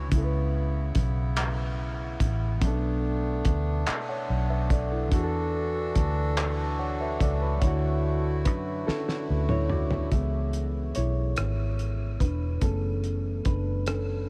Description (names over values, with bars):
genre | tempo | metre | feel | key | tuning
slow six-eight R&B | 48 BPM (dotted quarters) | 6/8 | straight | unclear | A4 = 440 Hz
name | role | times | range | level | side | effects
reed electric piano | accompaniment | 0.0-14.3 s | B2 to F#5 | -34 LUFS | equal | lush chorus
accordion | sustained chords | 0.0-10.1 s | C#3 to A4 | -37 LUFS | equal | none
vintage muted fingered electric bass | bass | 0.0-14.3 s | E1 to F#2 | -30 LUFS | equal | none
cloth-damped thuddy drum kit | drums | 0.1-14.1 s | handclaps, hi-hat, kick drum, rim click, snare drum, toms | -31 LUFS | equal | none
room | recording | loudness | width
moderate huge ambient reverb, RT60 7.9 s | dreamy mix soaked in reverb | -27 LUFS | mono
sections
0.0-10.1 A section; 10.1-14.3 B section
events
drum fill 8.9-10.1; reed electric piano solo 10.1-14.3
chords
0.1 C#m7; 2.6 Bm7; 5.1 E9sus4; 7.6 Dmaj9; 10.1 C#m7; 12.6 F#m11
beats
| 0.12 1.37 | 2.62 3.87 | 5.12 6.37 | 7.62 8.87 | 10.12 11.37 | 12.62 13.87